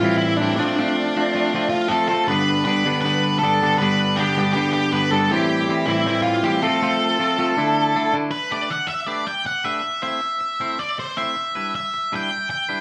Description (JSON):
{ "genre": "rock", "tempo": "159 BPM", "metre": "4/4", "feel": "straight", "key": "G mixolydian, G major from 8.3 s", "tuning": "A4 = 441 Hz", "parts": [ { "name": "octave-fuzz lead guitar", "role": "melody", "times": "0.0-12.8 s", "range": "D4 to G5", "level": "-23 LUFS", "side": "equal", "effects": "distortion" }, { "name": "twangy electric guitar", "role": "riff", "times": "0.0-12.8 s", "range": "G2 to C5", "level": "-24 LUFS", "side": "equal", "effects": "none" } ], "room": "wet large studio reverb, RT60 1.4 s", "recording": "band playing live in one room", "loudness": "-21 LUFS", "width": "mono", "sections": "0.0-8.3 A section; 8.3-12.8 B section", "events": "none", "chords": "0.0 Am7; 0.6 F; 2.3 G; 5.3 Am7; 6.6 F; 7.6 Dsus2; 8.3 Gadd9; 9.8 Am; 11.4 Em7" }